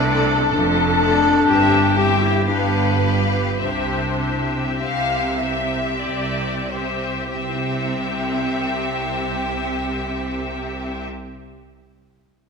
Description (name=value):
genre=classical, slow romantic movement for symphony orchestra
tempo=45-67 BPM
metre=3/4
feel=rubato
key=C major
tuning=A4 = 440 Hz
part: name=rich chamber violin section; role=melody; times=0.0-11.0 s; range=D5 to F5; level=-28 LUFS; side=left 4 dB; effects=none
part: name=mellow clarinet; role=second line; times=0.0-11.1 s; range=C4 to G4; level=-23 LUFS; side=left 2 dB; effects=none
part: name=rich chamber violin section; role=second line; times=0.0-11.1 s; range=G4 to F5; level=-25 LUFS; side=left 4 dB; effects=none
part: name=rich symphonic viola section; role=accompaniment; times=0.0-11.1 s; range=A3 to A4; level=-27 LUFS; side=left 1 dB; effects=none
part: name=concert harp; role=arpeggios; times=0.0-11.3 s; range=F2 to E5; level=-29 LUFS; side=left 7 dB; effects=none
part: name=rich chamber double bass section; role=bass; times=0.0-11.1 s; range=F1 to C2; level=-27 LUFS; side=right 4 dB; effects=none
part: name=rich symphonic cello section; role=bass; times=0.0-11.1 s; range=F2 to C3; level=-27 LUFS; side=right 5 dB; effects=none
room=wet scoring stage reverb, RT60 1.8 s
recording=none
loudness=-18 LUFS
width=side -5 dB against mid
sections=0.0-7.3 A section; 7.3-11.1 B section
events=slowing down 0.0-7.3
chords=0.0 D7(no3)/C; 0.5 Dm/F; 1.5 C/G; 2.5 G7; 3.6 C